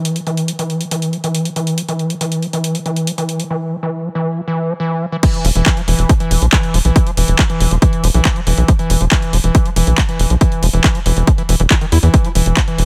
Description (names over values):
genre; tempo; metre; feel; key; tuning
psychedelic trance; 139 BPM; 4/4; straight; unclear; A4 = 440 Hz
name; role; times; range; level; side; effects
overdriven acid bass; riff; 0.0-12.8 s; D#3 to E4; -21 LUFS; equal; distortion, sidechain pumping, digital delay
techno drum kit; drums; 0.1-12.8 s; crash cymbal, handclaps, hi-hat; -23 LUFS; equal; overdrive
electronic kick drum; drums; 5.2-12.7 s; none; -16 LUFS; equal; overdrive
tight sequencer bass; bass; 5.4-12.8 s; E1 to E2; -15 LUFS; equal; tube saturation
room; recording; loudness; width
digital ambience; none; -15 LUFS; mono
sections
0.0-5.2 A section; 5.2-12.8 B section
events
drop 5.2-12.8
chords
0.0 N.C.; 5.2 E5